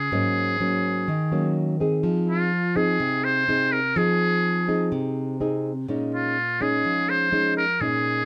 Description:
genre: bossa nova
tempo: 125 BPM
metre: 4/4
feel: straight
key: unclear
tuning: A4 = 444 Hz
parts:
  - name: trumpet with metal mute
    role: melody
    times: 0.0-8.2 s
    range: F4 to C5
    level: -25 LUFS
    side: equal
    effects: none
  - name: nylon-string guitar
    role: accompaniment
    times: 0.0-8.2 s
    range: Ab2 to Ab4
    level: -26 LUFS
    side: equal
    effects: none
room: light reverb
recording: none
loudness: -23 LUFS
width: mono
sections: 0.0-2.0 A section; 2.0-8.2 B section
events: none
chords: 0.1 Ab9sus4; 2.0 Fm7; 5.9 Bbm11

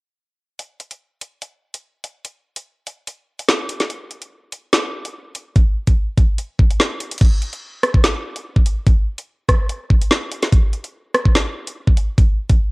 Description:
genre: hip hop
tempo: 145 BPM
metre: 4/4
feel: half-time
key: none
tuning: none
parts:
  - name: drill drum kit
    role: drums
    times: 0.6-12.6 s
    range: crash cymbal, hi-hat, kick drum, rim click, snare drum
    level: -15 LUFS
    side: equal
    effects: cassette tape
room: light reverb, digital ambience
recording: home recording on cassette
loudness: -16 LUFS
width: side -27 dB against mid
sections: 0.6-7.2 A section; 7.2-12.7 B section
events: none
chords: none

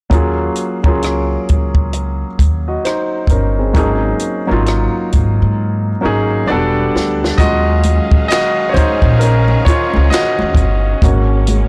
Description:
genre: R&B, neo-soul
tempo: 66 BPM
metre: 4/4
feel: swing 62% on 16ths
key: Eb dorian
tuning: A4 = 440 Hz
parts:
  - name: warm baby grand piano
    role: accompaniment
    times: 0.1-11.7 s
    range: Gb3 to Eb5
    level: -18 LUFS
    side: equal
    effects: none
  - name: upright bass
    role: bass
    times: 0.1-11.6 s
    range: E1 to Ab2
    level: -18 LUFS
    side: equal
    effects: transformer saturation
  - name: compact cocktail drum kit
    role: drums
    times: 0.1-11.7 s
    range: handclaps, hi-hat, kick drum, rim click, snare drum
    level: -16 LUFS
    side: equal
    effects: soft clipping on snare
  - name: clear studio string section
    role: sustained chords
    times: 7.4-11.7 s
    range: Ab3 to F5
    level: -28 LUFS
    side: equal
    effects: none
  - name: congas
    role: percussion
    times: 7.8-11.7 s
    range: none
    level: -26 LUFS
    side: equal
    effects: none
room: little or no reverb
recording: blown-out, overdriven recording, overdrive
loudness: -14 LUFS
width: mono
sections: 0.1-7.4 A section; 7.4-11.7 B section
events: drum fill 5.6-7.4; grand piano solo 7.4-11.7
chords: 0.1 Ebm11; 3.7 Ab7sus4; 6.5 Em11; 7.4 Ebm11; 11.0 Ab7sus4

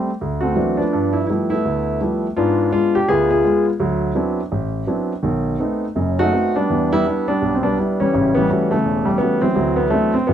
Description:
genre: solo jazz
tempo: 167 BPM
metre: 4/4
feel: swing 63% on 8ths, rubato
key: D mixolydian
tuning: A4 = 436 Hz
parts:
  - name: warm concert grand piano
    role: solo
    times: 0.0-10.3 s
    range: E1 to G#4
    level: -16 LUFS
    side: equal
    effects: none
room: light reverb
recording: dark, warm production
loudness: -16 LUFS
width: side -9 dB against mid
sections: 0.0-10.3 A section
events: none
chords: 0.2 D13; 0.9 G13; 2.4 G#dim7; 3.8 D13; 5.2 B7b9; 6.7 Em7; 8.2 A13; 9.6 D13

